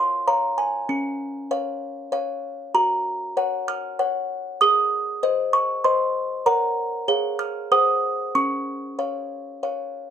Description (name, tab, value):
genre	classical, lullaby for music box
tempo	97 BPM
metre	3/4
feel	straight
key	Db major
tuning	A4 = 440 Hz
part	music box	solo	0.0-10.1 s	Db4 to F6	-21 LUFS	equal	none
room	light reverb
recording	none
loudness	-21 LUFS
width	side -8 dB against mid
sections	0.0-10.1 A section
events	none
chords	0.0 Db; 2.7 Gb; 4.6 Ab; 6.5 Gb/Bb; 7.1 Db/Ab; 7.7 Ab7; 8.4 Db